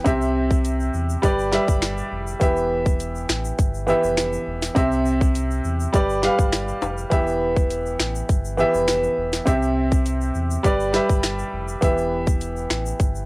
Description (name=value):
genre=dancehall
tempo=102 BPM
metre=4/4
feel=straight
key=unclear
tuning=A4 = 440 Hz
part: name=clear grand piano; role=accompaniment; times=0.0-13.3 s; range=C3 to F5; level=-21 LUFS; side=right 1 dB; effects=cassette tape
part: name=sub bass with octave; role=bass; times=0.1-13.3 s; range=E1 to E2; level=-27 LUFS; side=equal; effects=none
part: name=island pop drum kit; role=drums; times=0.1-13.1 s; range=finger snaps, hi-hat, kick drum, snare drum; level=-20 LUFS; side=equal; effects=overdrive, cassette tape
part: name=egg shaker and timbales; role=percussion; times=0.1-13.3 s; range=none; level=-37 LUFS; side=left 6 dB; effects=none
room=light reverb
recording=home recording on cassette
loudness=-19 LUFS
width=side -26 dB against mid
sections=0.0-13.3 A section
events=none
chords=0.1 C; 1.2 G; 2.4 Em; 4.8 C; 5.9 G; 7.1 Em; 9.5 C; 10.6 G; 11.8 Em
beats=| 0.06 0.65 1.23 1.82 | 2.41 3.00 3.59 4.17 | 4.76 5.35 5.94 6.53 | 7.12 7.70 8.29 8.88 | 9.47 10.06 10.64 11.23 | 11.82 12.41 13.00